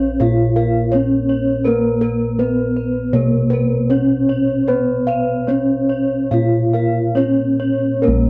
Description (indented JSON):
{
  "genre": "gamelan",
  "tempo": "68-83 BPM",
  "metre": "4/4",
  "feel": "straight",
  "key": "unclear",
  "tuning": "A4 = 440 Hz",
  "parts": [
    { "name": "gamelan-type bronze metallophone", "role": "melody", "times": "0.0-8.3 s", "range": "Bb3 to F4-30c", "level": "-20 LUFS", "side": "equal", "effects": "none" },
    { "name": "gamelan-type bronze metallophone", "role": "arpeggios", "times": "0.0-8.3 s", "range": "Bb4 to F5-30c", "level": "-28 LUFS", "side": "equal", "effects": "none" },
    { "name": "gamelan-type bossed gongs", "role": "bass", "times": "0.0-8.3 s", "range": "Bb1 to Cb5+20c", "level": "-22 LUFS", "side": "equal", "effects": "none" },
    { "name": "gamelan-type bossed gongs", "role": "arpeggios", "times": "0.2-8.3 s", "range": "Bb4 to F5-30c", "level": "-27 LUFS", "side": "equal", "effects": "none" }
  ],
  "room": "light reverb",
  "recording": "dry, close 1970s-style studio recording",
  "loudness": "-17 LUFS",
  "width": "mono",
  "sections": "0.0-8.0 A section",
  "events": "none",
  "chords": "none",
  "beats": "0.20 0.93 | 1.65 2.38 3.13 3.89 | 4.68 5.48 6.31 7.16 | 8.02"
}